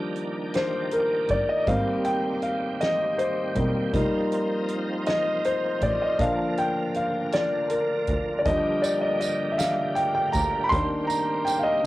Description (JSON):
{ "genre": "slow gospel", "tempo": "53 BPM (dotted quarters)", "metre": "6/8", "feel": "straight", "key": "Eb major", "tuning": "A4 = 440 Hz", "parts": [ { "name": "warm grand piano", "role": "accompaniment", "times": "0.0-11.9 s", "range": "D3 to C6", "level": "-23 LUFS", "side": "left 1 dB", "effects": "none" }, { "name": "bright tonewheel organ", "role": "sustained chords", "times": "0.0-11.8 s", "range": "D3 to Bb4", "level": "-33 LUFS", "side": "right 2 dB", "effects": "slow rotary speaker, chorus vibrato" }, { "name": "natural country drum kit", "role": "drums", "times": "0.2-11.6 s", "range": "hi-hat, kick drum, snare drum", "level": "-32 LUFS", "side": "right 1 dB", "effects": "cassette tape" }, { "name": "warm double bass", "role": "bass", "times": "1.3-10.8 s", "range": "Fb1 to Eb2", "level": "-29 LUFS", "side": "equal", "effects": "none" }, { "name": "tambourine", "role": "percussion", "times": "8.8-11.8 s", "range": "none", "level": "-36 LUFS", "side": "right 6 dB", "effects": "none" } ], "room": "moderate studio reverb, RT60 0.6 s", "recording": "home recording on cassette", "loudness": "-22 LUFS", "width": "side -17 dB against mid", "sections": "0.0-11.9 A section", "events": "grand piano solo 0.0-11.9", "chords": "0.0 Ebmaj7; 1.7 Abmaj7 (rootless); 3.9 F7sus4; 6.2 Bb; 8.5 Ebmaj7; 10.7 Cm7/Eb", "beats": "0.55 | 1.68 2.81 | 3.94 5.07 | 6.20 7.33 | 8.46 9.59 | 10.72 11.85" }